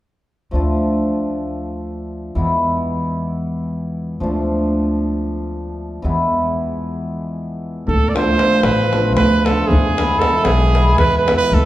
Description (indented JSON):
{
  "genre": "balkan folk, Balkan wedding band",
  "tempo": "229 BPM (eighths)",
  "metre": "7/8",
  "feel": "straight",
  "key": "D dorian sharp4",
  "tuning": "A4 = 440 Hz",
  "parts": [
    { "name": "cimbalom", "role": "accompaniment", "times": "0.5-11.6 s", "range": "E3 to F4", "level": "-20 LUFS", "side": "equal", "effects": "none" },
    { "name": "upright bass", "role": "bass", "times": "0.5-11.7 s", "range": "A1 to E2", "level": "-21 LUFS", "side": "equal", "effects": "none" },
    { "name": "clear trumpet", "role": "melody", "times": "7.9-11.7 s", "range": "G#4 to D5", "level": "-18 LUFS", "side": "right 3 dB", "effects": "none" },
    { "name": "davul", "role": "percussion", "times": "7.9-11.7 s", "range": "none", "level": "-19 LUFS", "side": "left 1 dB", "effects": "none" }
  ],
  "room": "wet recital hall reverb, RT60 1.8 s",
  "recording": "heard from further back in the room",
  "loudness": "-15 LUFS",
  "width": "side -15 dB against mid",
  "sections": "0.5-7.9 A section; 7.9-11.7 B section",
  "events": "none",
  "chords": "0.5 Dm; 2.4 E; 4.2 Dm; 6.0 E; 7.9 Dm; 9.7 E"
}